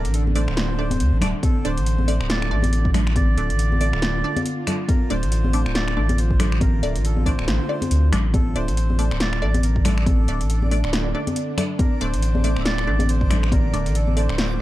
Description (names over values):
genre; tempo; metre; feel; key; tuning
deep dubstep; 139 BPM; 4/4; swing 58% on 16ths, half-time; D minor; A4 = 439 Hz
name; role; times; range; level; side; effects
melodica; melody; 0.0-14.6 s; A4 to E5; -31 LUFS; right 3 dB; dub echo
bowed-like drone; sustained chords; 0.0-14.6 s; D3 to F4; -31 LUFS; right 2 dB; built-in reverb, vintage 12-bit sampler grit
filtered dub chord stab; stabs; 0.0-14.4 s; A3 to D5; -30 LUFS; right 1 dB; phaser, dub echo
saturated sub bass; bass; 0.0-14.6 s; D1 to D2; -20 LUFS; equal; none
deep house drum kit; drums; 0.0-14.5 s; finger snaps, hi-hat, snare drum; -28 LUFS; equal; overdrive
congas; percussion; 0.3-14.1 s; none; -28 LUFS; left 3 dB; none
electronic kick drum; drums; 1.4-13.6 s; none; -20 LUFS; equal; overdrive
backwards swelling texture; texture; 9.5-14.6 s; D5; -35 LUFS; right 3 dB; built-in reverb
room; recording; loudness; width
little or no reverb; dark, warm production; -18 LUFS; side -15 dB against mid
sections
0.0-14.6 A section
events
none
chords
0.0 D5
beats
0.14 0.57 1.00 | 1.43 1.86 2.30 2.73 | 3.16 3.59 4.02 4.46 | 4.89 5.32 5.75 6.18 | 6.61 7.04 7.48 7.91 | 8.34 8.77 9.20 9.63 | 10.07 10.50 10.93 11.36 | 11.79 12.22 12.66 13.09 | 13.52 13.95 14.38